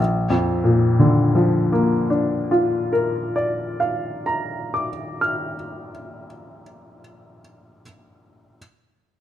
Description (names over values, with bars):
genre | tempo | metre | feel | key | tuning
classical, romantic character piece for solo piano | 38 BPM | 2/4 | rubato | Bb major | A4 = 438 Hz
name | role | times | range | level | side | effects
clear upright piano | solo | 0.0-8.6 s | Bb1 to F6 | -18 LUFS | left 1 dB | none
room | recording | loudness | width
moderate recital hall reverb, RT60 1.5 s | close, detailed microphones | -18 LUFS | side -11 dB against mid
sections
0.0-6.4 A section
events
none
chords
0.0 Bb